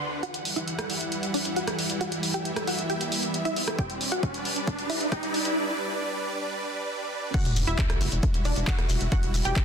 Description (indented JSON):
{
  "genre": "uplifting trance",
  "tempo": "135 BPM",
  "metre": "4/4",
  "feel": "straight",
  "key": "E minor",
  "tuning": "A4 = 439 Hz",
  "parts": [
    { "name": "wide unison pluck", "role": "melody", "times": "0.0-9.6 s", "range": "D4 to C6", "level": "-32 LUFS", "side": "equal", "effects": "sidechain pumping, tape echo" },
    { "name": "supersaw pad", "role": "sustained chords", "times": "0.0-9.6 s", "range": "D3 to F#5", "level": "-31 LUFS", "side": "right 1 dB", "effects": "sidechain pumping" },
    { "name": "noise sweep, riser and sub drop", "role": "sound effects", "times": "0.0-9.1 s", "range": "none", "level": "-34 LUFS", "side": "right 1 dB", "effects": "none" },
    { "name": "punchy analog drum machine", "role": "drums", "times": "0.2-9.6 s", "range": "crash cymbal, handclaps, hi-hat, rim click", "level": "-31 LUFS", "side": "right 1 dB", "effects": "soft clipping on snare" },
    { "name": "electronic kick drum", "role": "drums", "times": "3.8-9.6 s", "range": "none", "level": "-26 LUFS", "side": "equal", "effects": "none" },
    { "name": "shekere", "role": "percussion", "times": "7.3-9.6 s", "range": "none", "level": "-39 LUFS", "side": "left 5 dB", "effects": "none" },
    { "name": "tight sequencer bass", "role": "bass", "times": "7.5-9.5 s", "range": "E1 to F#1", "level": "-28 LUFS", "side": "equal", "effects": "sidechain pumping" }
  ],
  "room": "light reverb",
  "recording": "dense, heavily limited modern master, high-pass filter",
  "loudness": "-25 LUFS",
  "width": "side -7 dB against mid",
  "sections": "0.2-7.3 A section; 7.3-9.6 B section",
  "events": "noise sweep 0.0; build-up 0.2-7.3; riser 0.2-5.6; filter sweep on synth pluck 0.2-7.3; drum fill 3.8-5.6; break 5.6-7.3; drop 7.3-9.6; impact 7.3-9.1",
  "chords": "0.2 Emadd9; 3.8 G; 7.3 Emadd9"
}